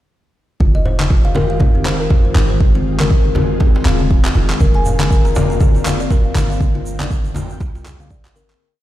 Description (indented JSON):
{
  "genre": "afro house",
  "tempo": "120 BPM",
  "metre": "4/4",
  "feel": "swing 58% on 16ths",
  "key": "F dorian",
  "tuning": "A4 = 440 Hz",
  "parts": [
    { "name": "ethereal airy pad", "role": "sustained chords", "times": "1.0-8.6 s", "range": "D3 to G5", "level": "-24 LUFS", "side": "equal", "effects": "ensemble chorus, built-in reverb, sidechain pumping" },
    { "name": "kalimba", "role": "arpeggios", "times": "0.6-8.6 s", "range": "C4 to Bb5", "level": "-23 LUFS", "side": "left 4 dB", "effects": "sidechain pumping, digital delay" },
    { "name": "warm 808-style bass", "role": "bass", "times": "0.6-8.5 s", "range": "Eb1 to C2", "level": "-20 LUFS", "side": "right 1 dB", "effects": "sidechain pumping" },
    { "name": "electronic kick drum", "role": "drums", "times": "0.6-8.2 s", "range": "none", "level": "-14 LUFS", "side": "equal", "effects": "none" },
    { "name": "congas", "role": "percussion", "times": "0.6-8.5 s", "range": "none", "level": "-21 LUFS", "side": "left 2 dB", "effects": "none" },
    { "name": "electronic handclaps", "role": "drums", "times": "1.0-8.6 s", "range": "none", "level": "-25 LUFS", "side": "equal", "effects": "none" },
    { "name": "djembe", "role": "percussion", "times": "1.4-8.3 s", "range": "none", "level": "-26 LUFS", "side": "right 3 dB", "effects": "none" },
    { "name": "egg shaker", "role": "percussion", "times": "4.6-8.6 s", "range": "none", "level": "-36 LUFS", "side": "right 5 dB", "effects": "none" }
  ],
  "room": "small room ambience",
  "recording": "played on a big sound system in a bare room, large studio reverb",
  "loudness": "-12 LUFS",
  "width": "side -14 dB against mid",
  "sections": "0.6-8.6 groove",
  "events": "fade-out 5.9-8.6",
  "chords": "0.6 Fm9; 4.6 Bbadd9/F",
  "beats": "| 0.61 1.11 1.61 2.11 | 2.61 3.11 3.61 4.11 | 4.61 5.11 5.61 6.11 | 6.61 7.11 7.61 8.11"
}